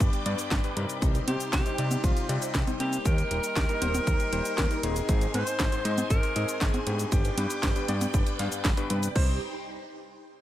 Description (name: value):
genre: italo disco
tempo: 118 BPM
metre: 4/4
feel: straight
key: C minor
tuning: A4 = 445 Hz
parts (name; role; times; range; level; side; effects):
- breathy alto saxophone; melody; 0.0-9.4 s; F4 to C5; -33 LUFS; equal; ping-pong delay
- phased string machine; sustained chords; 0.0-9.4 s; Eb4 to D6; -35 LUFS; right 1 dB; ensemble chorus, phaser
- warm electric grand piano; stabs; 0.0-9.3 s; G2 to F5; -34 LUFS; left 4 dB; digital delay
- fat analog bass; bass; 0.0-9.4 s; Eb1 to C3; -31 LUFS; equal; tube saturation
- house drum kit; drums; 0.0-9.3 s; crash cymbal, kick drum; -26 LUFS; equal; overdrive
- house drum kit; drums; 0.0-9.1 s; cabasa, congas, handclaps, hi-hat, snare drum; -32 LUFS; equal; overdrive
room: digital ambience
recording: none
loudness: -24 LUFS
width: side -13 dB against mid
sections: 0.0-9.2 A section; 9.2-10.4 B section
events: none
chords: 0.0 G; 1.0 Cm; 3.1 Eb; 5.1 Ab; 7.1 G; 9.2 Cm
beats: 0.00 0.51 | 1.02 1.53 2.04 2.55 | 3.05 3.56 4.07 4.58 | 5.09 5.60 6.11 6.61 | 7.12 7.63 8.14 8.65 | 9.16